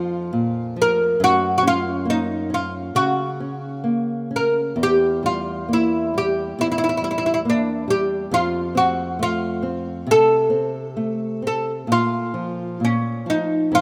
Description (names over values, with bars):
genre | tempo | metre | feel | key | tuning
fado-style ballad | 67 BPM | 2/4 | uneven beats, rubato | Bb harmonic minor | A4 = 440 Hz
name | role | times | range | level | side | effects
oud | melody | 0.0-13.8 s | Db4 to Bb4 | -22 LUFS | equal | none
nylon-string guitar | accompaniment | 0.0-13.8 s | E2 to Db4 | -27 LUFS | equal | none
room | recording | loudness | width
moderate plate reverb, RT60 3.5 s | rough home demo mix | -21 LUFS | mono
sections
0.0-13.8 A section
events
none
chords
0.0 Bb5; 1.2 Gb; 4.8 Edim; 8.3 F; 11.9 Bb5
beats
0.30 | 1.18 2.05 | 2.93 3.83 | 4.76 5.68 | 6.57 7.44 | 8.31 9.20 | 10.08 10.98 | 11.90 12.82 | 13.73